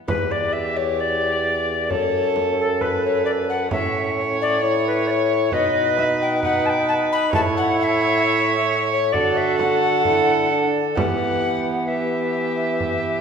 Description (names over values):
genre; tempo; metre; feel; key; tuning
classical, renaissance-style consort dance; 66 BPM; 4/4; straight; E dorian; A4 = 440 Hz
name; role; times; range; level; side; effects
mellow alto recorder; melody; 0.1-13.2 s; A4 to B5; -22 LUFS; left 4 dB; none
warm viola; second line; 0.1-13.2 s; G4 to C#5; -24 LUFS; right 4 dB; none
dark bassoon; bass; 0.1-13.2 s; E2 to E3; -25 LUFS; right 1 dB; none
frame drum; percussion; 0.1-13.2 s; none; -29 LUFS; right 3 dB; none
mellow trombone; accompaniment; 1.9-13.2 s; B3 to A4; -24 LUFS; right 1 dB; none
room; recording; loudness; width
wet scoring stage reverb, RT60 1.8 s; recorded in a church or concert hall; -18 LUFS; side -6 dB against mid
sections
0.1-13.2 A section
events
none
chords
0.1 Em; 1.9 F#m; 3.7 A; 5.5 B; 7.3 A; 9.1 D; 11.0 Em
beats
| 0.08 0.99 1.90 2.81 | 3.71 4.62 5.52 6.43 | 7.33 8.23 9.14 10.05 | 10.96 11.89 12.80